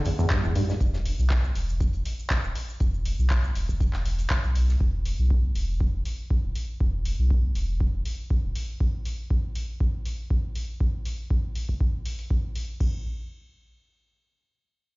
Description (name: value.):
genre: acid house.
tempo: 120 BPM.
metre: 4/4.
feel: swing 53% on 16ths.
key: E minor pentatonic.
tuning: A4 = 443 Hz.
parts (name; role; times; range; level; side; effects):
saturated sub bass; bass; 0.0-8.5 s; D1 to B1; -26 LUFS; equal; sidechain pumping.
damped 70s drum kit; drums; 0.0-4.8 s; hi-hat, snare drum; -46 LUFS; left 1 dB; high-pass filter on hats, high-pass filter on snare, high-pass filter on room.
acid bass, saw; riff; 0.1-0.7 s; E2 to G2; -25 LUFS; equal; lush chorus, cassette tape, sidechain pumping, ping-pong delay.
booming analog drum machine; drums; 0.1-12.9 s; crash cymbal, handclaps, hi-hat, shaker; -36 LUFS; equal; none.
electronic kick drum; drums; 0.3-12.9 s; none; -26 LUFS; equal; none.
room: little or no reverb.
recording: played on a big sound system in a bare room, large studio reverb, nothing above 7.4 kHz.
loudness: -24 LUFS.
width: side -24 dB against mid.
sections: 0.0-12.8 A section; 12.8-15.0 B section.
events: filter sweep on sub bass 0.0-8.8.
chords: 0.0 E5; 12.8 N.C..